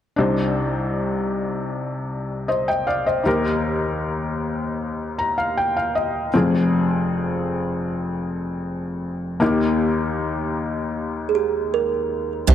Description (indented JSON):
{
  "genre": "pop ballad",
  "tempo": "78 BPM",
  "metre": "4/4",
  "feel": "straight",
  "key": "Eb major",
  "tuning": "A4 = 441 Hz",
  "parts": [
    { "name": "felt-muted upright piano", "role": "accompaniment", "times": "0.2-12.5 s", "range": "F1 to Bb5", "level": "-21 LUFS", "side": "left 2 dB", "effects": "none" },
    { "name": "kalimba", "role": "melody", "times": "11.3-12.5 s", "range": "G4 to C5", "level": "-21 LUFS", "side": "right 9 dB", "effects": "none" },
    { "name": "picked steel-string acoustic guitar", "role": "arpeggios", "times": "12.5 s", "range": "C3 to G4", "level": "-20 LUFS", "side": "right 12 dB", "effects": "none" },
    { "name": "saturated sub bass", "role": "bass", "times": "12.5 s", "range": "C2", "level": "-11 LUFS", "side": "right 2 dB", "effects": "none" }
  ],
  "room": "light reverb, small room ambience",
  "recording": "dark, warm production",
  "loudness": "-20 LUFS",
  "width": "side -10 dB against mid",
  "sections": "0.2-12.5 A section",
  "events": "felt piano fill 4.8-6.3",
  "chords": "0.2 Cmadd9; 3.3 Eb; 6.3 Fm; 9.4 Eb"
}